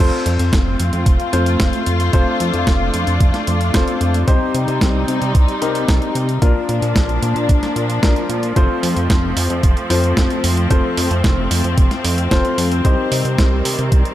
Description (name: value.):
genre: italo disco.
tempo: 112 BPM.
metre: 4/4.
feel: straight.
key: unclear.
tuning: A4 = 440 Hz.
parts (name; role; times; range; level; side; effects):
rich studio string section; sustained chords; 0.0-14.1 s; Eb3 to F4; -22 LUFS; left 1 dB; none.
clear grand piano; stabs; 0.0-14.1 s; Bb3 to C5; -22 LUFS; left 3 dB; vintage 12-bit sampler grit, tape echo.
chorused synth bass; bass; 0.0-14.0 s; F1 to C3; -19 LUFS; equal; tube saturation.
clean 12-bit digital drum machine; drums; 0.3-14.1 s; hi-hat, snare drum; -23 LUFS; right 1 dB; none.
electronic kick drum; drums; 0.5-14.0 s; none; -15 LUFS; right 1 dB; none.
room: light reverb, digital ambience.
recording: none.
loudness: -14 LUFS.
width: side -13 dB against mid.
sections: 0.0-14.1 A section.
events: none.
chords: 0.0 F; 4.3 Cm; 6.4 Bb; 8.6 F; 12.8 Cm.